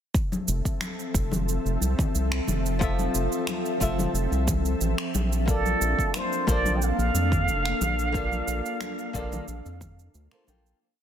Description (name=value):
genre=sunset chillout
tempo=90 BPM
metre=4/4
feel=straight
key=F major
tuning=A4 = 440 Hz
part: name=electronic cabasa and finger snaps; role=drums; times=0.1-10.8 s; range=none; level=-34 LUFS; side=right 5 dB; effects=soft clipping on snare
part: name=electronic kick drum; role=drums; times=0.1-10.0 s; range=none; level=-27 LUFS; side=equal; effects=none
part: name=ethereal airy pad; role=sustained chords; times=0.5-10.8 s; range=F3 to E5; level=-31 LUFS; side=left 1 dB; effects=ensemble chorus, built-in reverb
part: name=congas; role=percussion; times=0.3-10.6 s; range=none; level=-34 LUFS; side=left 2 dB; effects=none
part: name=round analog bass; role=bass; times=0.5-10.7 s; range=F1 to F2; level=-27 LUFS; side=equal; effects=none
part: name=flamenco guitar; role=accompaniment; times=2.8-10.8 s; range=F3 to G5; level=-32 LUFS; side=left 2 dB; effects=auto-pan, digital delay
part: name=trumpet with plunger mute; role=melody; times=5.5-10.2 s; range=A4 to G5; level=-28 LUFS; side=right 2 dB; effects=digital delay
room=light reverb, small room reverb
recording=dense, heavily limited modern master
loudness=-23 LUFS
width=side -9 dB against mid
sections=0.1-10.8 groove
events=fade-out 7.3-10.8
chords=0.1 Fmaj7; 5.5 Bbmaj7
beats=| 0.15 0.81 1.48 2.15 | 2.81 3.48 4.15 4.81 | 5.48 6.15 6.81 7.48 | 8.15 8.81 9.48 10.15